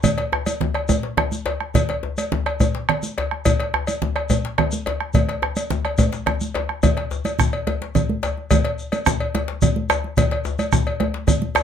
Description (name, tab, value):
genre	west african traditional, West African drum ensemble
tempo	142 BPM (dotted quarters)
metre	12/8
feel	straight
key	none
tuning	none
part	bombo	percussion	0.0-11.6 s	none	-22 LUFS	right 1 dB	none
part	congas	percussion	0.0-11.5 s	none	-24 LUFS	right 6 dB	none
part	cowbell	percussion	0.0-11.6 s	none	-26 LUFS	equal	none
part	djembe	percussion	0.0-11.6 s	none	-26 LUFS	left 5 dB	none
part	shekere	percussion	0.0-11.6 s	none	-27 LUFS	left 4 dB	none
room	wet small room reverb, RT60 0.6 s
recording	none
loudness	-19 LUFS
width	side -8 dB against mid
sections	0.0-6.8 A section; 6.8-11.6 B section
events	speeding up 0.0-11.6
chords	none